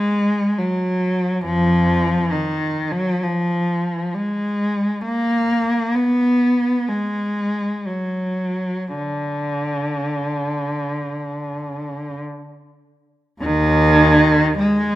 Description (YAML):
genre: classical, free, expressive piece for unaccompanied cello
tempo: free time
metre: none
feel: none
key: unclear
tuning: A4 = 438 Hz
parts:
  - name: warm cello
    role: solo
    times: 0.0-15.0 s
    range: Eb2 to Cb4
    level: -17 LUFS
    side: equal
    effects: none
room: moderate recital hall reverb, RT60 1.6 s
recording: none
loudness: -17 LUFS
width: side -15 dB against mid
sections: 0.0-13.4 A section; 13.4-15.0 B section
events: none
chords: none